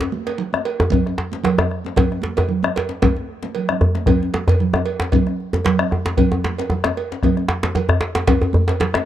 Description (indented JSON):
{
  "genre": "west african traditional, West African drum ensemble",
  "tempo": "114 BPM",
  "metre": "4/4",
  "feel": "swing 53% on 16ths",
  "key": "none",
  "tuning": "none",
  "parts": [
    { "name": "djembe", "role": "percussion", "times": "0.0-9.1 s", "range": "none", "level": "-24 LUFS", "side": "left 6 dB", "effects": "none" },
    { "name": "djembe", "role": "percussion", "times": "0.0-9.1 s", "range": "none", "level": "-19 LUFS", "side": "equal", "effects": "none" },
    { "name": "congas", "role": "percussion", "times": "0.1-9.1 s", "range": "none", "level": "-23 LUFS", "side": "right 6 dB", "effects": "none" },
    { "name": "cowbell", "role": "percussion", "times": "0.3-8.8 s", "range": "none", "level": "-26 LUFS", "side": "right 7 dB", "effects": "none" },
    { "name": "bombo", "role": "percussion", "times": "0.5-9.1 s", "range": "none", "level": "-21 LUFS", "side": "left 2 dB", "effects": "none" }
  ],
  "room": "small room ambience",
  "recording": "dry, close 1970s-style studio recording",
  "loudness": "-17 LUFS",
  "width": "side -12 dB against mid",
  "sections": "0.0-9.1 A section",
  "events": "drum fill 3.5-4.1",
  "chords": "none"
}